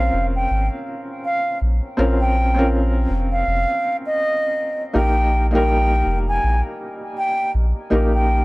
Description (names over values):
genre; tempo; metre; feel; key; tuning
trip hop; 81 BPM; 4/4; swing 58% on 16ths; Bb dorian; A4 = 437 Hz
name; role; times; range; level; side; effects
bright baroque flute; melody; 0.0-8.4 s; Eb5 to Ab5; -22 LUFS; equal; tape echo
felt-muted upright piano; accompaniment; 0.0-8.4 s; G3 to Bb4; -24 LUFS; equal; tremolo, tape echo
concert harp; arpeggios; 0.0-1.5 s; Bb3 to Db4; -49 LUFS; right 1 dB; none
soft dub sub bass; bass; 0.0-8.4 s; F1 to Bb1; -19 LUFS; equal; none
room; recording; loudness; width
little or no reverb; dry, gritty hardware recording, transformer saturation; -17 LUFS; side -22 dB against mid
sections
0.0-8.4 A section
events
none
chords
0.0 Bbmadd9; 4.9 Eb